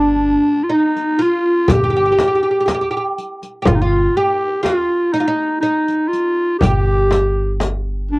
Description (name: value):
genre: Turkish makam ensemble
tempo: 122 BPM (eighths)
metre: 10/8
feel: straight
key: unclear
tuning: A4 = 440 Hz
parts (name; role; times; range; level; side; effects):
- growling clarinet; melody; 0.0-8.2 s; D4 to G4; -16 LUFS; equal; cassette tape
- oud; second line; 0.0-7.6 s; D4 to G4; -21 LUFS; right 1 dB; cassette tape
- upright bass; bass; 0.0-8.2 s; G1; -20 LUFS; equal; none
- darbuka; percussion; 0.2-8.2 s; none; -24 LUFS; equal; none
- riq; percussion; 1.0-7.8 s; none; -24 LUFS; left 2 dB; none
- frame drum; percussion; 1.7-7.8 s; none; -20 LUFS; left 1 dB; none
room: light reverb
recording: home recording on cassette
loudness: -14 LUFS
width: side -25 dB against mid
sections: 0.0-8.2 A section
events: none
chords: none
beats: 0.22 0.71 1.21 1.70 2.19 2.68 3.18 | 3.67 4.16 4.65 5.15 5.64 6.13 6.62 7.12 7.61 8.10